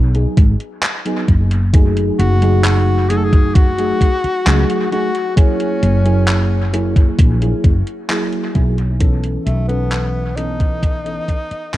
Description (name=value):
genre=vaporwave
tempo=66 BPM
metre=4/4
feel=straight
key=F# dorian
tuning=A4 = 441 Hz
part: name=mellow FM electric piano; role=accompaniment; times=0.0-11.8 s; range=E3 to A4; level=-21 LUFS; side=right 1 dB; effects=lush chorus, cassette tape, dub echo
part: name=woody fretless electric bass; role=bass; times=0.0-11.8 s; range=F#1 to C#2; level=-16 LUFS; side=equal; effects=analog chorus
part: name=gated 80s digital drum machine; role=drums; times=0.1-11.8 s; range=handclaps, hi-hat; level=-24 LUFS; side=equal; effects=gated reverb, vintage 12-bit sampler grit, dub echo
part: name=electronic kick drum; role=drums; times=0.4-11.5 s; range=none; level=-12 LUFS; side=equal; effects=vintage 12-bit sampler grit
part: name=clear tenor saxophone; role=melody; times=2.2-11.8 s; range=A3 to A4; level=-22 LUFS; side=left 2 dB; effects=vintage 12-bit sampler grit, tape echo
room=light reverb, digital ambience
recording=echo-heavy mix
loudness=-13 LUFS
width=side -15 dB against mid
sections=0.0-11.8 A section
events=fade-out 6.6-11.8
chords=0.0 G#m7; 1.7 F#m69; 5.4 F#9; 9.0 B9sus4